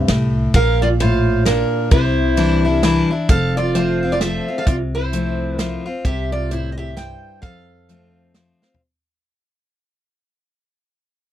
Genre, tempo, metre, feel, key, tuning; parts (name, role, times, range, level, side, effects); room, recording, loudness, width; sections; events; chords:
honky-tonk and classic country; 131 BPM; 3/4; swing 60% on 8ths; F major; A4 = 440 Hz
picked steel-string acoustic guitar; melody; 0.0-8.3 s; D4 to G5; -21 LUFS; right 1 dB
picked steel-string acoustic guitar; accompaniment; 0.0-8.8 s; F2 to F4; -21 LUFS; left 2 dB
upright bass; bass; 0.1-8.5 s; F1 to F2; -21 LUFS; equal
natural country drum kit; drums; 0.1-8.8 s; hi-hat, kick drum, ride cymbal, snare drum, toms; -17 LUFS; right 1 dB
little or no reverb; dry, close 1970s-style studio recording; -15 LUFS; side -12 dB against mid
0.0-3.3 A section; 3.3-8.8 B section
fade-out 3.3-8.8; drum fill 8.6
0.0 C; 0.5 Bb; 1.9 Cadd9; 3.3 F; 6.0 C; 7.4 F